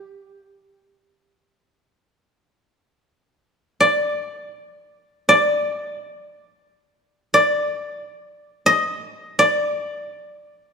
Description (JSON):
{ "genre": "japanese traditional, Japanese chamber music", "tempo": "free time", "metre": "none", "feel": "none", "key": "unclear", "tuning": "A4 = 441 Hz", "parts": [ { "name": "koto", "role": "solo", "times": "0.0-10.7 s", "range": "G4 to Eb5", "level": "-17 LUFS", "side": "equal", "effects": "none" } ], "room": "moderate scoring stage reverb, RT60 1.7 s", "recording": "none", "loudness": "-17 LUFS", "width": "side -5 dB against mid", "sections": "0.0-2.4 A section; 2.4-10.7 A section", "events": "none", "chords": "none" }